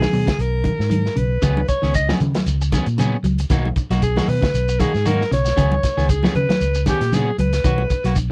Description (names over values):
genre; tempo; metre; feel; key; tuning
afrobeat; 116 BPM; 4/4; swing 55% on 16ths; unclear; A4 = 442 Hz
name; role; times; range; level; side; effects
raspy alto saxophone; melody; 0.0-8.1 s; G4 to Eb5; -25 LUFS; equal; none
semi-hollow electric guitar; arpeggios; 0.0-8.2 s; Db3 to Gb3; -26 LUFS; equal; spring reverb
fingered electric bass; bass; 0.0-8.3 s; Cb2 to Db3; -23 LUFS; equal; none
crunchy breakbeat drum kit; drums; 0.0-8.3 s; hi-hat, kick drum, snare drum; -26 LUFS; equal; none
congas; percussion; 0.0-8.3 s; none; -28 LUFS; equal; none
electric guitar at the edge of break-up; stabs; 1.4-8.2 s; Gb3 to Ab4; -29 LUFS; equal; none
shekere; percussion; 1.4-8.3 s; none; -32 LUFS; equal; none
room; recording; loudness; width
little or no reverb; dry, close 1970s-style studio recording; -19 LUFS; mono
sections
0.0-8.3 A section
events
alto saxophone solo 0.0-8.3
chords
0.0 Cbmaj7; 1.4 Db7sus4; 3.5 Cbmaj7; 5.6 Db7sus4; 7.6 Cbmaj7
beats
0.39 0.91 | 1.43 1.95 2.47 2.98 | 3.50 4.02 4.54 5.06 | 5.57 6.09 6.61 7.12 | 7.64 8.16